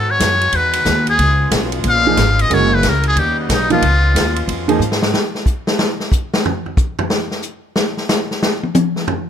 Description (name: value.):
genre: jazz, big band swing.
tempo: 183 BPM.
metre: 4/4.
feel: swing 64% on 8ths.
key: unclear.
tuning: A4 = 440 Hz.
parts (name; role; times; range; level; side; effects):
trumpet with metal mute; melody; 0.0-4.4 s; B3 to E#5; -16 LUFS; left 2 dB; none.
warm saxophone section; sustained chords; 0.0-5.1 s; C#3 to Gb4; -26 LUFS; left 1 dB; none.
upright bass; bass; 0.0-5.1 s; F#1 to G#2; -17 LUFS; equal; none.
swinging big-band drum kit; drums; 0.2-9.2 s; hi-hat, kick drum, ride cymbal, snare drum, toms; -18 LUFS; left 1 dB; none.
clear concert grand piano; accompaniment; 2.1-4.8 s; E#3 to A#4; -16 LUFS; right 4 dB; none.
room: little or no reverb.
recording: none.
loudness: -13 LUFS.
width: side -8 dB against mid.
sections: 0.0-5.1 A section; 5.1-9.3 A section.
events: muted trumpet solo 0.0-5.1; drum fill 4.8-5.1; drum solo 5.1-9.3.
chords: 0.0 G#m7; 1.2 C#7; 2.5 F#7; 3.2 D#7b13; 3.8 C#7; 5.1 N.C..